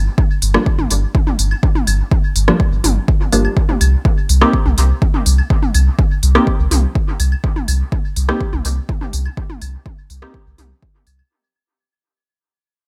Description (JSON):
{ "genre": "dub techno", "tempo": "124 BPM", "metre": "4/4", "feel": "straight", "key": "unclear", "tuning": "A4 = 440 Hz", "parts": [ { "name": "soft dub sub bass", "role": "bass", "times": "0.0-11.2 s", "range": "G1 to C2", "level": "-17 LUFS", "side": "equal", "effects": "tube saturation, sidechain pumping" }, { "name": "electronic kick drum", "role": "drums", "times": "0.2-10.9 s", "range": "none", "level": "-18 LUFS", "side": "equal", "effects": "none" }, { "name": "deep house drum kit", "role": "drums", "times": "0.4-11.2 s", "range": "hi-hat, rim click", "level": "-23 LUFS", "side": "equal", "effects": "dub echo" }, { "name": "filtered dub chord stab", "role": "stabs", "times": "0.5-10.4 s", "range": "F3 to G4", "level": "-22 LUFS", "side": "equal", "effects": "chorus, phaser, sidechain pumping, dub echo" }, { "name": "electronic toms and claves", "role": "percussion", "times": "0.8-11.3 s", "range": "none", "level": "-27 LUFS", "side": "equal", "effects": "overdrive, sidechain pumping on perc, sidechain pumping on toms, dub echo" } ], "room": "light reverb", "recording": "none", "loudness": "-15 LUFS", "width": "mono", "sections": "0.0-11.3 A section", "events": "filter sweep on synth stab 0.0-11.3; fade-out 6.1-11.3", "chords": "none" }